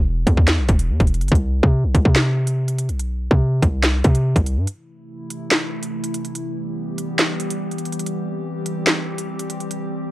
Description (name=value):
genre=hip hop, drill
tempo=143 BPM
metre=4/4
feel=half-time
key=unclear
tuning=A4 = 440 Hz
part: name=hard-hitting 808-style bass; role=bass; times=0.0-4.7 s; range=E1 to C3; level=-18 LUFS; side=equal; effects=none
part: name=drill drum kit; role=drums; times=0.3-9.8 s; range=handclaps, hi-hat, kick drum, snare drum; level=-18 LUFS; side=equal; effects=overdrive, vintage 12-bit sampler grit
part: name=warbly tape-like pad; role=sustained chords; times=4.7-10.1 s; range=C3 to G4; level=-26 LUFS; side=equal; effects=chorus, built-in reverb
room=digital ambience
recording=echo-heavy mix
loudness=-18 LUFS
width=side -15 dB against mid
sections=0.0-10.1 A section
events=break 4.7-10.1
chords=0.0 N.C.; 1.3 C5; 4.7 Am; 6.4 Em; 8.0 C